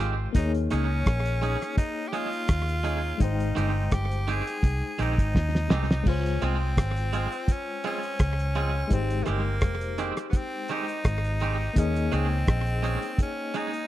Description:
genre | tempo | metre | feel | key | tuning
lovers rock reggae | 84 BPM | 4/4 | swing 55% on 16ths | Ab major | A4 = 439 Hz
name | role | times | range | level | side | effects
raspy tenor saxophone | melody | 0.0-13.9 s | A3 to Ab4 | -32 LUFS | equal | tape echo
FM electric piano with tremolo | accompaniment | 0.0-13.9 s | Ab3 to G5 | -34 LUFS | left 6 dB | slapback echo
twangy electric guitar | stabs | 0.0-13.7 s | Eb3 to Ab4 | -32 LUFS | right 6 dB | slapback echo
vintage muted fingered electric bass | bass | 0.0-13.0 s | F1 to Eb2 | -27 LUFS | equal | none
cloth-damped thuddy drum kit | drums | 0.3-13.9 s | crash cymbal, hi-hat, kick drum, rim click, snare drum | -24 LUFS | equal | slapback echo
room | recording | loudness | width
small room ambience | dry, close 1970s-style studio recording | -24 LUFS | side -14 dB against mid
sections
0.0-6.1 A section; 6.1-13.9 A section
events
drum fill 5.3-6.1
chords
0.4 Eb7sus4; 3.2 Abmaj7; 6.1 Dbmaj7; 8.9 Abmaj7; 11.8 Eb7sus4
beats
| 0.35 1.07 1.78 2.49 | 3.21 3.92 4.63 5.35 | 6.06 6.77 7.49 8.20 | 8.91 9.62 10.34 11.05 | 11.76 12.48 13.19

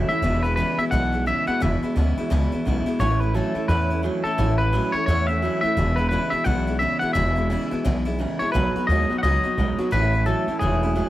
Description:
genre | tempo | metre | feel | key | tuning
rockabilly | 173 BPM | 4/4 | swing 61% on 8ths | E major | A4 = 439 Hz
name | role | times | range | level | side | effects
twangy electric guitar | melody | 0.0-11.1 s | G#4 to F#5 | -25 LUFS | left 1 dB | analog delay
picked steel-string acoustic guitar | accompaniment | 0.0-11.1 s | E2 to F#4 | -27 LUFS | left 2 dB | none
electric guitar through a small old amp | riff | 0.0-11.1 s | E2 to G#3 | -28 LUFS | right 3 dB | none
upright bass | bass | 0.0-11.0 s | E1 to E2 | -23 LUFS | equal | none
room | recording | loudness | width
light reverb | none | -20 LUFS | side -14 dB against mid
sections
0.0-11.1 A section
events
none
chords
0.2 E; 3.0 A; 5.8 E; 8.5 B; 9.9 A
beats
| 0.22 0.57 0.92 1.26 | 1.61 1.96 2.30 2.65 | 3.00 3.34 3.69 4.04 | 4.38 4.73 5.08 5.42 | 5.77 6.11 6.46 6.81 | 7.15 7.50 7.84 8.19 | 8.54 8.88 9.23 9.57 | 9.92 10.26 10.61 10.96

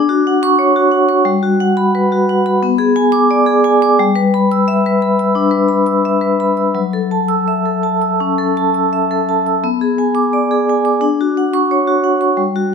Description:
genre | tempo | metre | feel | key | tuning
classical, contemporary piece for solo vibraphone | 87 BPM | 4/4 | rubato | B minor | A4 = 440 Hz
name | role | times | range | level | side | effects
vibraphone with medium hard mallets | solo | 0.0-12.7 s | F#3 to E6 | -12 LUFS | equal | none
room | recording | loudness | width
moderate recital hall reverb, RT60 1.5 s | close, detailed microphones | -12 LUFS | side -6 dB against mid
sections
0.0-12.7 A section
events
none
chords
0.0 Dmaj7; 1.3 Gmaj7; 2.6 Bm6; 4.0 G6; 6.8 F#m7; 9.6 Bm6; 11.0 Dmaj7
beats
0.59 | 1.27 1.96 2.64 3.32 | 4.01 4.68 5.36 6.05 | 6.76 7.49 8.20 8.92 | 9.63 10.33 11.02 11.71 | 12.39

